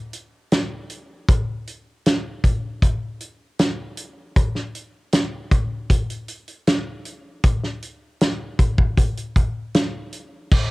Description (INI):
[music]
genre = pop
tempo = 78 BPM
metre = 4/4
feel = straight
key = none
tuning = none
[part]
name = natural country drum kit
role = drums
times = 0.1-10.7 s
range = crash cymbal, hi-hat, kick drum, snare drum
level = -19 LUFS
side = equal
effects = none
[sound]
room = little or no reverb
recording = home recording on cassette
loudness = -20 LUFS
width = side -22 dB against mid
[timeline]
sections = 0.0-10.5 A section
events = none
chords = none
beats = 0.52 | 1.29 2.06 2.82 3.59 | 4.36 5.13 5.90 6.67 | 7.44 8.21 8.98 9.75 | 10.52